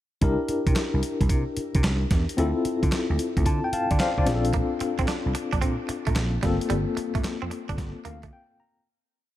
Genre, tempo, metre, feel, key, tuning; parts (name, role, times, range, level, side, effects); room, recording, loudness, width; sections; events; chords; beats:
R&B, new jack swing; 111 BPM; 4/4; swing 67% on 16ths; A4 = 439 Hz
tine electric piano; accompaniment; 0.2-8.9 s; Bb3 to Bb5; -27 LUFS; left 3 dB; medium tremolo, shimmer reverb
vintage slap bass; bass; 0.2-8.3 s; G1 to D3; -27 LUFS; right 1 dB
dusty soul sampler-style drum kit; drums; 0.2-8.3 s; handclaps, hi-hat, kick drum, snare drum; -26 LUFS; right 1 dB
direct-recorded clean electric guitar; riff; 4.5-8.3 s; G3 to D4; -33 LUFS; right 8 dB; lush chorus, shimmer reverb
light reverb, digital ambience; -22 LUFS; side -13 dB against mid
0.2-8.9 verse
tine electric piano fill 3.5-4.5, 7.8-8.9; fade-out 6.7-8.9; break 8.3-8.9
0.2 C7; 2.4 Dm9; 4.3 Bbmaj9; 6.4 Gm11
| 0.21 0.76 1.30 1.84 | 2.38 2.92 3.46 4.00 | 4.54 5.08 5.62 6.16 | 6.70 7.24 7.78 8.32